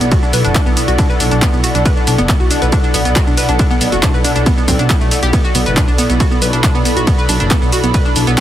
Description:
driving peak-time techno; 138 BPM; 4/4; straight; B minor; A4 = 438 Hz
analog pluck; riff; 0.0-8.4 s; A3 to B4; -18 LUFS; equal; chorus, overdrive, sidechain pumping, dub echo
dark detuned saw bass; bass; 0.0-8.4 s; F#1 to B1; -17 LUFS; equal; sidechain pumping
swarming drone; drone; 0.0-8.4 s; B2; -24 LUFS; equal; built-in reverb, sidechain pumping
punchy analog drum machine; drums; 0.0-8.4 s; handclaps, hi-hat, ride cymbal, shaker; -20 LUFS; equal; sidechain pumping on hats, sidechain pumping on perc, sidechain pumping on cymbals
airy breathy pad; texture; 0.0-8.4 s; E4 to B5; -20 LUFS; equal; chorus, sidechain pumping
electronic kick drum; drums; 0.1-8.4 s; -14 LUFS; equal
light reverb, digital ambience; heavily compressed radio sound; -11 LUFS; side -12 dB against mid
0.0-8.4 A section
0.0 Bm
| 0.12 0.55 0.99 1.42 | 1.85 2.29 2.73 3.16 | 3.60 4.03 4.46 4.90 | 5.33 5.77 6.20 6.64 | 7.07 7.51 7.94 8.38

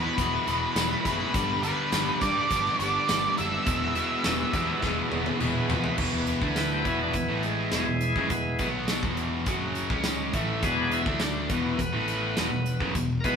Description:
classic rock; 103 BPM; 4/4; straight; A4 = 439 Hz
octave-fuzz lead guitar; melody; 0.0-5.4 s; B4 to E5; -28 LUFS; right 1 dB; distortion
bright tonewheel organ; sustained chords; 0.0-13.4 s; E3 to B4; -32 LUFS; equal; overdrive, slow rotary speaker
cranked stack guitar; riff; 0.0-13.4 s; E2 to E4; -32 LUFS; left 1 dB; overdrive
overdriven electric guitar; riff; 0.0-13.4 s; E2 to D4; -31 LUFS; equal
fuzz picked electric bass; bass; 0.0-13.4 s; E1 to G2; -34 LUFS; equal; overdrive
big rock drum kit; drums; 0.2-13.4 s; crash cymbal, hi-hat, kick drum, snare drum, tambourine, toms; -30 LUFS; equal
tambourine; percussion; 0.2-5.8 s; -45 LUFS; left 5 dB
electric slide guitar; second line; 4.3-5.8 s; D4 to B4; -36 LUFS; left 4 dB
moderate studio reverb, RT60 0.5 s; band playing live in one room; -24 LUFS; side -6 dB against mid
0.0-6.0 A section; 6.0-13.4 B section
drum fill 4.8-6.0; tonewheel organ solo 6.0-13.4
0.0 E; 1.3 G; 3.7 E
0.18 0.76 | 1.34 1.92 2.50 3.08 | 3.66 4.24 4.82 5.40 | 5.98 6.57 7.15 7.73 | 8.31 8.89 9.47 10.05 | 10.63 11.21 11.79 12.38 | 12.96

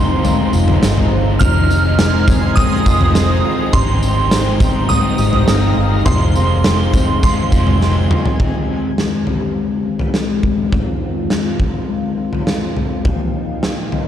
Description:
dream pop; 103 BPM; 4/4; straight; F minor; A4 = 440 Hz
shimmering bell with halo; melody; 0.0-8.1 s; C6 to F6; -21 LUFS; right 4 dB; ensemble chorus, tape echo
overdriven electric guitar; accompaniment; 0.0-8.9 s; F2 to Eb4; -23 LUFS; right 3 dB; harmonic tremolo, lush chorus
hollow soft pad; sustained chords; 0.0-14.1 s; Eb2 to Bb5; -24 LUFS; left 3 dB; chorus, phaser, low-pass filter
mellow electric guitar; arpeggios; 0.0-14.1 s; Eb3 to G4; -22 LUFS; left 4 dB; wide subtle chorus, low-pass filter, tape echo
vintage muted fingered electric bass; bass; 0.0-8.1 s; F1 to Ab1; -17 LUFS; equal
huge arena drum kit; drums; 0.2-14.1 s; kick drum, snare drum, tambourine, toms; -17 LUFS; equal
twinkling granular texture; texture; 2.1-8.6 s; F5 to C6; -31 LUFS; equal; built-in reverb, tape echo
little or no reverb; cassette tape; -13 LUFS; side -10 dB against mid
0.0-8.4 A section; 8.4-14.1 B section
drum fill 7.8-8.4; filter sweep 8.4-14.1
0.0 Fm7; 3.7 Abmaj7; 6.1 Fm7; 13.1 Ebadd9
0.24 0.82 | 1.40 1.98 2.57 3.15 | 3.73 4.32 4.90 5.48 | 6.06 6.64 7.23 7.81 | 8.39 8.97 9.56 10.14 | 10.72 11.30 11.89 12.47 | 13.05 13.63

